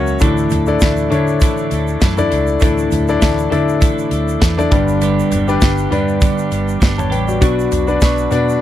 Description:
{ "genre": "piano-driven pop", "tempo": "100 BPM", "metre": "4/4", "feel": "swing 56% on 16ths", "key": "unclear", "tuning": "A4 = 440 Hz", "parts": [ { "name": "warm upright piano", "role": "accompaniment", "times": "0.0-8.6 s", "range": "G2 to A5", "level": "-16 LUFS", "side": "left 4 dB", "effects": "none" }, { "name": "twelve-string electric guitar", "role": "riff", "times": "0.0-8.6 s", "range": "G2 to A4", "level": "-22 LUFS", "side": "right 10 dB", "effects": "none" }, { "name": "vintage muted fingered electric bass", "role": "bass", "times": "0.0-8.6 s", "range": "G1 to D3", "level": "-20 LUFS", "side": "right 1 dB", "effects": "none" }, { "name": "egg shaker", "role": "percussion", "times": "0.1-8.6 s", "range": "none", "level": "-37 LUFS", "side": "right 14 dB", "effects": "none" }, { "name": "modern studio drum kit", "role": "drums", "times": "0.2-8.5 s", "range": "hi-hat, kick drum, snare drum, toms", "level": "-16 LUFS", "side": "right 1 dB", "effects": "none" } ], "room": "little or no reverb", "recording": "dry, close 1970s-style studio recording", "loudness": "-13 LUFS", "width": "side -12 dB against mid", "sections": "0.0-8.6 A section", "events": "none", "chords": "0.2 Dsus2; 4.7 G; 7.4 Bm" }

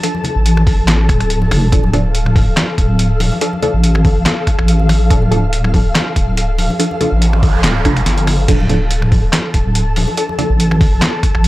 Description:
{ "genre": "deep dubstep", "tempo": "142 BPM", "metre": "4/4", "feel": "swing 54% on 16ths, half-time", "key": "D minor", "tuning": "A4 = 436 Hz", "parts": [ { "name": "filtered dub chord stab", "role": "stabs", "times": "0.0-10.4 s", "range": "F3 to A4", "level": "-22 LUFS", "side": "right 1 dB", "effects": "phaser, dub echo" }, { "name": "trip hop sampler-style drum kit", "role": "drums", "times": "0.0-11.5 s", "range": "crash cymbal, finger snaps, handclaps, hi-hat, snare drum", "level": "-19 LUFS", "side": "equal", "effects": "overdrive" }, { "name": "flickering grainy texture", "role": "texture", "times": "0.0-11.5 s", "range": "A4 to A5", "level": "-23 LUFS", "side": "left 2 dB", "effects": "built-in reverb" }, { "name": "congas", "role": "percussion", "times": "0.1-10.8 s", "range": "none", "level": "-24 LUFS", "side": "left 2 dB", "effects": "none" }, { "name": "deep soft wobble bass", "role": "bass", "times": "0.4-11.5 s", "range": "D1 to A1", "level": "-13 LUFS", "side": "equal", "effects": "chorus, transformer saturation" }, { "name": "electronic kick drum", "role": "drums", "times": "0.7-11.3 s", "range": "none", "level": "-15 LUFS", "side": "equal", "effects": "overdrive" }, { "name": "noise sweep", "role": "sound effects", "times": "7.0-8.5 s", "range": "none", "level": "-25 LUFS", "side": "right 2 dB", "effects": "none" } ], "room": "little or no reverb", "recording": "dry, gritty hardware recording", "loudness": "-11 LUFS", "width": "side -17 dB against mid", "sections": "0.0-11.5 A section", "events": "noise sweep 7.0-8.5", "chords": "0.0 Dm" }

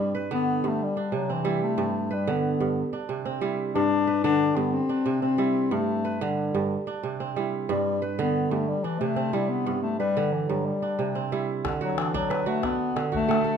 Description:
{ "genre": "west african traditional, West African string and xylophone music", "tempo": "122 BPM (dotted quarters)", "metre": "12/8", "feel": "straight", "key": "G major", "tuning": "A4 = 445 Hz", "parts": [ { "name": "warm bass clarinet", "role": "melody", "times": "0.0-13.6 s", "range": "E3 to D4", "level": "-26 LUFS", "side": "left 5 dB", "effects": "none" }, { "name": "kora", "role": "arpeggios", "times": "0.0-13.6 s", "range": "G2 to B4", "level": "-27 LUFS", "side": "right 6 dB", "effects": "none" }, { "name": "calabash", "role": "percussion", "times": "11.6-13.4 s", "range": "none", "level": "-33 LUFS", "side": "left 6 dB", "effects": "none" } ], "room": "moderate recital hall reverb, RT60 1.4 s", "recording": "minimal, uncompressed stereo recording", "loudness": "-24 LUFS", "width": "side -7 dB against mid", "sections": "0.0-11.6 A section; 11.6-13.6 B section", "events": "none", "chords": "0.0 G; 0.8 C; 1.8 G; 2.8 C; 3.8 G; 4.7 C; 5.7 G; 6.7 C; 7.7 G; 8.7 C; 9.7 G; 10.7 C; 11.6 D" }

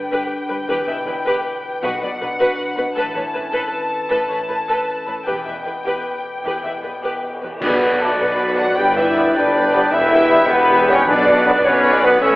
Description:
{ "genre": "cinematic, heroic adventure film score", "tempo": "104 BPM (dotted quarters)", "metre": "12/8", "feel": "straight", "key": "B minor", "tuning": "A4 = 440 Hz", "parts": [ { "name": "dark symphonic violin section", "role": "melody", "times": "0.0-12.4 s", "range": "D5 to B5", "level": "-26 LUFS", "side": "left 2 dB", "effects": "none" }, { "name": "concert harp", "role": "arpeggios", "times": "0.0-12.4 s", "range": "E2 to D6", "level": "-26 LUFS", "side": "left 2 dB", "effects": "none" }, { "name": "warm symphonic violin section", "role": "second line", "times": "0.1-12.4 s", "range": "F#4 to G5", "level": "-24 LUFS", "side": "equal", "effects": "none" }, { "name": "warm symphonic viola section", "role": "accompaniment", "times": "0.1-12.4 s", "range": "F#4 to E5", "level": "-22 LUFS", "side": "equal", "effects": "none" }, { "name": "warm symphonic cello section", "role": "bass", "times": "0.1-12.4 s", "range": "E2 to B2", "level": "-29 LUFS", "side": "equal", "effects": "none" }, { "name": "warm symphonic double bass section", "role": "bass", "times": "0.7-12.4 s", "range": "E1 to B1", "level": "-30 LUFS", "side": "right 1 dB", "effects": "none" }, { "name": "timpani", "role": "percussion", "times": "1.8-2.4, 7.6-11.6 s", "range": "B2", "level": "-31 LUFS", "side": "equal", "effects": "none" }, { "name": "cymbal swell, clash cymbals and concert bass drum", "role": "percussion", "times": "5.3-8.3 s", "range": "none", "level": "-29 LUFS", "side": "equal", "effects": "none" }, { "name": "silver concert flute", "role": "second line", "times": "7.6-12.4 s", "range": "A4 to G5", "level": "-23 LUFS", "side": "equal", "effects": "none" }, { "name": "warm clarinet", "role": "second line", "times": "7.6-12.4 s", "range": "B4 to D5", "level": "-25 LUFS", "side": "equal", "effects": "none" }, { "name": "warm oboe", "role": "second line", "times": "7.6-12.4 s", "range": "E5 to G5", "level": "-23 LUFS", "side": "right 1 dB", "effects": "none" }, { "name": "warm French horn section", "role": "sustained chords", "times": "7.6-12.4 s", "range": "A3 to G4", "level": "-18 LUFS", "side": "equal", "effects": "none" }, { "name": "dark tuba", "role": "bass", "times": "7.6-12.4 s", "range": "E1 to B1", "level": "-28 LUFS", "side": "right 1 dB", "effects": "none" }, { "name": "bright trombone section", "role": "sustained chords", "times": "8.0-12.1 s", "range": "F#3 to D4", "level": "-24 LUFS", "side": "right 1 dB", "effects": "none" } ], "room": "wet scoring stage reverb, RT60 1.6 s", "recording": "telephone sound", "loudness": "-15 LUFS", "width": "side -20 dB against mid", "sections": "0.0-7.6 A section; 7.6-12.4 B section", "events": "band accent 7.6-8.0", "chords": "0.0 G; 0.7 Em; 1.8 Bm; 3.0 Aadd9; 5.3 Em; 7.6 Bm; 8.8 G; 9.9 Em; 11.1 Bm" }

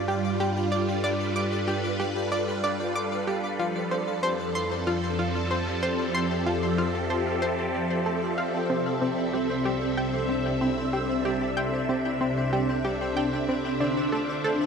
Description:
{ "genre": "ambient, sequencer-driven space music", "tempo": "94 BPM", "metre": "4/4", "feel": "straight", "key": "unclear", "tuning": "A4 = 440 Hz", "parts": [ { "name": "phased string machine", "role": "sustained chords", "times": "0.0-14.7 s", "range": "C3 to E5", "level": "-27 LUFS", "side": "equal", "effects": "ensemble chorus, phaser" }, { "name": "concert harp", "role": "arpeggios", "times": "0.0-14.7 s", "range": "B3 to C5", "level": "-37 LUFS", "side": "equal", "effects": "auto-pan, ping-pong delay" }, { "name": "analog drone", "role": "bass", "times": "0.0-14.7 s", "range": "C2 to G2", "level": "-34 LUFS", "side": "equal", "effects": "chorus" }, { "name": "pulsing gated texture", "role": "texture", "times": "0.0-14.7 s", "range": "D5", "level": "-37 LUFS", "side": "equal", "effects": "chorus, built-in reverb" }, { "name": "analog pluck", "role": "riff", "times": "0.1-14.6 s", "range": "C4 to D6", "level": "-30 LUFS", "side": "left 1 dB", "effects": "chorus, ping-pong delay" } ], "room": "wet huge ambient reverb, RT60 7.4 s", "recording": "none", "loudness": "-24 LUFS", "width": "side -6 dB against mid", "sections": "0.0-14.7 A section", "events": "fade-in on harp 0.0-14.7", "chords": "0.0 G7; 3.6 Fmaj9; 8.7 C6; 13.8 Dm7" }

